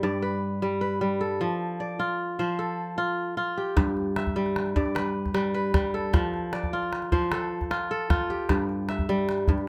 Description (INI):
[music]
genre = west african traditional, West African string and xylophone music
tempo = 102 BPM (dotted quarters)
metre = 12/8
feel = straight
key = G mixolydian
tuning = A4 = 440 Hz
[part]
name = kora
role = arpeggios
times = 0.0-9.7 s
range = G2 to E5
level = -28 LUFS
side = equal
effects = none
[part]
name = calabash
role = percussion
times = 3.8-9.6 s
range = none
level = -30 LUFS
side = equal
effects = none
[sound]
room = little or no reverb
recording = close, detailed microphones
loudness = -27 LUFS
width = mono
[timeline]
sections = 0.0-3.8 A section; 3.8-9.7 A section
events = none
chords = 0.0 G; 1.4 F; 3.8 G; 6.1 F; 8.5 N.C.